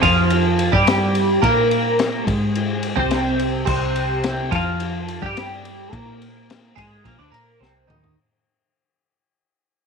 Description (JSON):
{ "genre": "psychedelic rock", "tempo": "107 BPM", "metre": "4/4", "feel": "straight", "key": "C minor", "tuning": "A4 = 439 Hz", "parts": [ { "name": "twelve-string electric guitar", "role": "riff", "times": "0.0-8.2 s", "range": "Bb2 to Bb4", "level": "-19 LUFS", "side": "right 1 dB", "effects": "phaser, double-tracked left and right" }, { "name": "fingered electric bass", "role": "bass", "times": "0.0-8.1 s", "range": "Bb1 to Bb2", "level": "-24 LUFS", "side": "right 1 dB", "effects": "none" }, { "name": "crunchy breakbeat drum kit", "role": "drums", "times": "0.0-8.2 s", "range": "crash cymbal, kick drum, ride cymbal, snare drum, toms", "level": "-24 LUFS", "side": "left 5 dB", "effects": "none" } ], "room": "light reverb, studio reverb", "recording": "1960s-style stereo", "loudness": "-17 LUFS", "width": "side -5 dB against mid", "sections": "0.0-8.2 A section", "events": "fade-out 0.0-8.2; drum fill 7.6-8.2", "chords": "0.0 Cm", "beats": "0.30 0.86 | 1.42 1.98 2.54 3.11 | 3.67 4.23 4.79 5.35 | 5.92 6.48 7.04 7.60" }